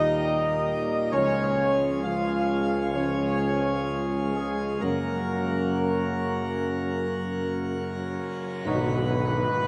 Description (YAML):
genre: classical, ceremonial fanfare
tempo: 64 BPM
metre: 4/4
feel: straight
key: Db major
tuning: A4 = 439 Hz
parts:
  - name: dark trumpet section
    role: melody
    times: 0.0-9.7 s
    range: Ab4 to F5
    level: -32 LUFS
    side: equal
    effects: none
  - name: mellow French horn section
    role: sustained chords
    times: 0.0-9.0 s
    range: Ab3 to F4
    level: -34 LUFS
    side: equal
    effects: none
  - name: mellow trombone section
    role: sustained chords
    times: 0.0-9.0 s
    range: Bb2 to G3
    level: -37 LUFS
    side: equal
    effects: none
  - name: pipe organ, plenum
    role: sustained chords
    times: 0.0-9.7 s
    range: Bb2 to Cb5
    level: -33 LUFS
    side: equal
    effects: none
  - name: mellow tuba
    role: bass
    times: 0.0-9.4 s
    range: Cb2 to Gb2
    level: -32 LUFS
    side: equal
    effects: none
  - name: cymbal swell and tam-tam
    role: percussion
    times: 4.8-9.7 s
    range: none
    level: -38 LUFS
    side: equal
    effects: none
room: wet church reverb, RT60 3.9 s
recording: dark, warm production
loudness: -26 LUFS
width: mono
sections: 0.0-8.7 A section; 8.7-9.7 B section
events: band accent 8.7-9.6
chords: 0.0 Eb; 1.1 Db; 4.8 Gb; 8.7 Cb